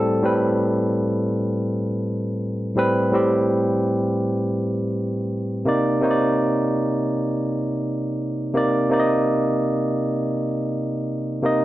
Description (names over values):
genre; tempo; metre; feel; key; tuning
R&B; free time; none; none; unclear; A4 = 440 Hz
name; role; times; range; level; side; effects
barky tine electric piano; solo; 0.0-11.6 s; A2 to Eb5; -19 LUFS; equal; none
room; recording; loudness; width
light reverb; none; -20 LUFS; side -15 dB against mid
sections
0.0-11.6 A section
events
none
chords
0.0 Am9; 5.6 Cm9